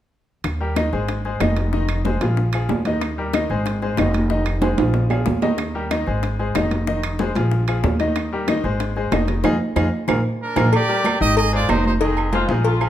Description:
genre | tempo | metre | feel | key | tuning
latin, salsa | 187 BPM | 4/4 | straight | Eb major | A4 = 439 Hz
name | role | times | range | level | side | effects
upright bass | bass | 0.4-12.9 s | F1 to F2 | -22 LUFS | equal | none
bongos and cowbell | percussion | 0.4-12.8 s | none | -28 LUFS | left 7 dB | none
congas | percussion | 0.4-12.9 s | none | -26 LUFS | right 1 dB | none
timbales and agogo bells | percussion | 0.4-12.9 s | none | -26 LUFS | right 5 dB | none
claves | percussion | 0.5-12.9 s | none | -33 LUFS | right 7 dB | none
bright baby grand piano | accompaniment | 0.6-12.9 s | Eb3 to Eb5 | -24 LUFS | left 3 dB | none
bright trumpet section | melody | 10.4-12.3 s | C4 to Eb5 | -21 LUFS | right 2 dB | none
warm saxophone section | second line | 12.3-12.9 s | Eb4 to F4 | -24 LUFS | left 1 dB | none
room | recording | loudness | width
moderate large studio reverb, RT60 1.1 s | none | -18 LUFS | side -12 dB against mid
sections
0.4-10.7 A section; 10.7-12.9 B section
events
drum fill 4.6-5.6, 9.4-10.7; band accent 9.4-10.7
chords
0.4 Eb; 1.1 Ab; 1.7 Fm7; 2.4 Bb5; 3.0 Eb; 3.7 Ab; 4.3 Fm7; 4.9 Bb5; 5.6 Eb; 6.2 Ab; 6.9 Fm7; 7.5 Bb5; 8.2 Eb; 8.8 Ab; 9.4 Fm7; 10.1 Bb7; 10.7 Eb; 11.4 Ab; 12.0 Fm7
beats
| 0.45 0.77 1.09 1.41 | 1.73 2.05 2.38 2.70 | 3.02 3.34 3.66 3.98 | 4.30 4.62 4.95 5.27 | 5.59 5.91 6.23 6.55 | 6.88 7.20 7.52 7.84 | 8.16 8.48 8.80 9.12 | 9.45 9.77 10.09 10.41 | 10.73 11.05 11.37 11.69 | 12.01 12.33 12.65

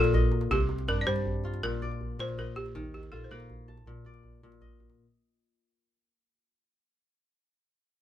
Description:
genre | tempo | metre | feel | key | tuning
west african traditional, West African string and xylophone music | 107 BPM (dotted quarters) | 12/8 | straight | unclear | A4 = 441 Hz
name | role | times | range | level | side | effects
balafon | melody | 0.0-4.0 s | G4 to D5 | -32 LUFS | equal | none
kora | arpeggios | 0.0-5.7 s | Bb2 to A5 | -34 LUFS | left 4 dB | none
hollow-body short-scale fingered electric bass | bass | 0.0-4.9 s | Bb1 to G2 | -34 LUFS | right 1 dB | none
djembe | percussion | 0.0-5.0 s | none | -33 LUFS | right 1 dB | none
room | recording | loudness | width
moderate small room reverb, RT60 0.5 s | band playing live in one room | -28 LUFS | side -11 dB against mid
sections
0.0-5.0 A section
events
fade-out 0.0-5.0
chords
0.0 Bb; 0.5 Cm; 1.6 Bb; 2.7 Eb5; 3.9 Bb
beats
| 0.51 1.07 1.63 2.19 | 2.75 3.31 3.87 4.43

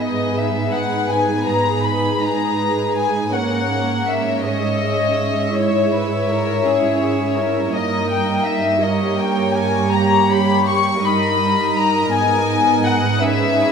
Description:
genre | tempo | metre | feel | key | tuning
classical, slow romantic movement for string orchestra | 54 BPM (dotted quarters) | 12/8 | rubato | G# minor | A4 = 441 Hz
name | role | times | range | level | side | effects
warm symphonic violin section | melody | 0.0-13.7 s | C#5 to C#6 | -19 LUFS | left 5 dB | none
warm symphonic violin section | second line | 0.0-13.7 s | G4 to E5 | -23 LUFS | equal | none
dark chamber viola section | accompaniment | 0.0-13.7 s | G3 to G4 | -22 LUFS | right 4 dB | none
dark studio cello section | bass | 0.0-13.7 s | G2 to G#2 | -23 LUFS | right 4 dB | none
room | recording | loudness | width
wet concert hall reverb, RT60 2.3 s | none | -16 LUFS | side -6 dB against mid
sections
0.0-13.7 A section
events
none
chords
0.0 G#m; 3.3 A#m7b5/G#; 7.7 D#7/G; 12.1 G#m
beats
1.09 2.21 | 3.33 4.43 5.55 6.64 | 7.74 8.81 9.92 11.02 | 12.12 13.21

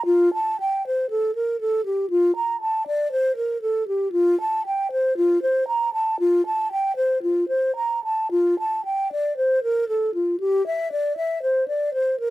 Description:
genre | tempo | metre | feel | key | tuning
classical, baroque-style fantasia for unaccompanied flute | 58 BPM | 4/4 | rubato | F major, D minor from 8.3 s | A4 = 440 Hz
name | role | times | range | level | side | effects
mellow hollow concert flute | solo | 0.0-12.3 s | F4 to Bb5 | -20 LUFS | equal | none
room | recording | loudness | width
little or no reverb | close, detailed microphones | -20 LUFS | side -16 dB against mid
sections
0.0-12.3 A section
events
none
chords
none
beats
| 0.07 1.12 2.11 3.13 | 4.15 5.17 6.20 7.24 | 8.32 9.38 10.41 11.44

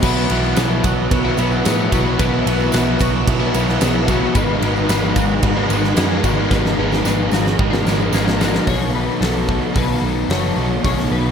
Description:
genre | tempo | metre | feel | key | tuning
rock, shoegaze and dream pop | 111 BPM | 4/4 | straight | B mixolydian | A4 = 437 Hz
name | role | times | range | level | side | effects
phased string machine | sustained chords | 0.0-8.6 s | G#4 to E6 | -30 LUFS | right 1 dB | ensemble chorus, phaser
clean electric guitar | arpeggios | 0.0-11.3 s | F#4 to C#5 | -26 LUFS | left 10 dB | analog chorus, slapback echo
crunchy overdriven guitar | riff | 0.0-8.7 s | G#2 to B3 | -23 LUFS | right 1 dB | none
overdriven electric guitar | riff | 0.0-11.3 s | G#2 to A4 | -22 LUFS | left 8 dB | analog chorus
overdriven semi-hollow guitar | riff | 0.0-11.3 s | B2 to B4 | -23 LUFS | right 12 dB | reverse reverb
vintage muted picked electric bass | bass | 0.0-11.3 s | F#1 to A2 | -22 LUFS | right 1 dB | none
huge arena drum kit | drums | 0.0-11.1 s | crash cymbal, hi-hat, kick drum, ride cymbal, snare drum | -21 LUFS | equal | none
tambourine | percussion | 0.0-8.6 s | none | -35 LUFS | right 12 dB | none
room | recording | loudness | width
light reverb, studio reverb | none | -15 LUFS | side -7 dB against mid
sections
0.0-8.7 A section; 8.7-11.3 B section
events
drum fill 6.5-8.7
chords
0.0 Bsus4; 4.4 G#m7; 8.7 B5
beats
| 0.03 0.57 1.11 1.65 | 2.19 2.73 3.27 3.81 | 4.35 4.89 5.43 5.97 | 6.51 7.05 7.59 8.13 | 8.67 9.21 9.76 10.30 | 10.85

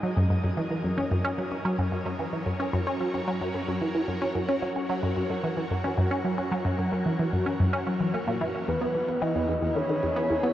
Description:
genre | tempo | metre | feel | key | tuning
ambient, sequencer-driven space music | 111 BPM | 4/4 | straight | unclear | A4 = 440 Hz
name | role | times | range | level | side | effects
phased string machine | sustained chords | 0.0-10.5 s | E3 to D#5 | -34 LUFS | left 1 dB | ensemble chorus, phaser
resonant blip pluck | riff | 0.0-10.5 s | E2 to C#4 | -26 LUFS | equal | phaser, tape echo
soft octave-layered synth lead | melody | 8.7-10.5 s | B4 to D#5 | -28 LUFS | equal | chorus, tape echo
room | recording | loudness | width
wet shimmer reverb, RT60 8.1 s | worn, warbling old tape, cassette tape, warbly pitch drift | -25 LUFS | side -12 dB against mid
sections
0.0-10.5 A section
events
fade-in on string machine 0.0-10.5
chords
0.0 F#; 8.7 E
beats
| 0.03 0.57 1.11 1.65 | 2.19 2.73 3.27 3.81 | 4.35 4.89 5.43 5.97 | 6.52 7.06 7.60 8.14 | 8.68 9.22 9.76 10.30

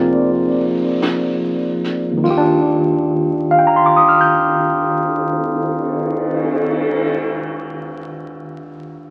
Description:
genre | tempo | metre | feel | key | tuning
jazz ballad | 48 BPM | 4/4 | swing 66% on 8ths | Eb major | A4 = 440 Hz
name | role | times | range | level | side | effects
barky tine electric piano | accompaniment | 0.0-9.1 s | Eb2 to G6 | -18 LUFS | equal | none
upright bass | bass | 0.0-5.4 s | F1 to Eb2 | -39 LUFS | equal | none
vintage brush drum kit | drums | 1.0-7.1 s | cymbal swell, hi-hat, kick drum, ride cymbal, snare drum | -26 LUFS | equal | none
room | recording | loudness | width
wet club reverb, RT60 0.5 s | very old 78 rpm record, vinyl crackle | -17 LUFS | mono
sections
0.0-2.2 A section; 2.2-7.3 B section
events
slowing down 0.0-2.2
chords
0.0 Bb9sus4; 2.2 Ebmaj9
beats
1.02 | 2.25 3.52 4.79 6.05

